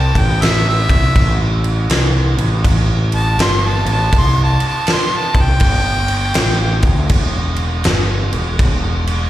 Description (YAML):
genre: blues rock power trio and southern rock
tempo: 81 BPM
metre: 4/4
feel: swing 64% on 8ths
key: unclear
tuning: A4 = 439 Hz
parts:
  - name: bright harmonica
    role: melody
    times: 0.0-7.1 s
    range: E5 to C6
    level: -20 LUFS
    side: equal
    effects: overdrive, slapback echo, tape echo
  - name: growling picked electric bass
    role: bass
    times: 0.0-9.3 s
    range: E1 to D2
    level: -16 LUFS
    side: equal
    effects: overdrive
  - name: huge arena drum kit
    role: drums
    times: 0.2-9.2 s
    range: crash cymbal, kick drum, snare drum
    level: -16 LUFS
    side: equal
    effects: none
room: little or no reverb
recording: live gig heard through the venue's PA, recital hall reverb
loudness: -12 LUFS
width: side -14 dB against mid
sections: 0.0-9.3 A section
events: harmonica solo 0.0-9.3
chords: 0.0 A5; 5.6 N.C.; 6.4 A7sus4; 7.1 Em